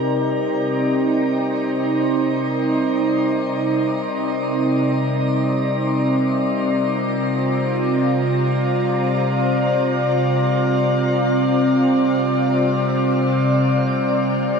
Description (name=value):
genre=ambient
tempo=free time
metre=none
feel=none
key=C minor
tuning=A4 = 445 Hz
part: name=evolving wavetable pad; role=sustained chords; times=0.0-14.6 s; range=C3 to D5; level=-17 LUFS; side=equal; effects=chorus, built-in reverb
part: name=analog drone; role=drone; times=0.2-14.6 s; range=C3 to G3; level=-30 LUFS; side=equal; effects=chorus
part: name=drifting glass-harmonics texture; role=texture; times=0.0-14.6 s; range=Bb4 to Bb5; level=-30 LUFS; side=left 1 dB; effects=chorus, built-in reverb
room=wet shimmer reverb, RT60 7.7 s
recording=none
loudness=-17 LUFS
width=side -5 dB against mid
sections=0.0-14.6 A section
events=fade-in on synth drone 0.0-14.6; fade-out on synth texture 0.0-14.6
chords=0.0 Cmadd9